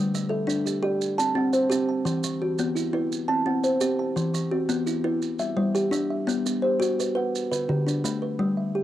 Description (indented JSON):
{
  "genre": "southern african traditional, mbira-style interlocking cycle",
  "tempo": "114 BPM (dotted quarters)",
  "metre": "12/8",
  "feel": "straight",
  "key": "G major",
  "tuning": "A4 = 440 Hz",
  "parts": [
    { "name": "kalimba", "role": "arpeggios", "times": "0.0-8.8 s", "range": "D3 to A5", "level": "-23 LUFS", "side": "left 1 dB", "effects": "cassette tape" },
    { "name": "kalimba", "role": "arpeggios", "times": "0.0-8.8 s", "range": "D3 to A5", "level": "-31 LUFS", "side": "right 6 dB", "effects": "cassette tape" },
    { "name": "maracas", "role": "percussion", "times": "0.1-8.2 s", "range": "none", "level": "-36 LUFS", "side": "right 8 dB", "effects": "none" }
  ],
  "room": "light reverb, small room ambience",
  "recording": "home recording on cassette",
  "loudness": "-23 LUFS",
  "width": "side -12 dB against mid",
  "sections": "0.0-8.4 A section",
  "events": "none",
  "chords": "0.0 G; 1.0 C5; 2.1 E5; 3.1 C5; 4.2 E5; 5.2 G; 6.3 B5; 7.3 D",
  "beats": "0.48 1.01 1.53 | 2.06 2.58 3.11 3.64 | 4.17 4.69 5.22 5.75 | 6.28 6.81 7.34 7.87 | 8.40"
}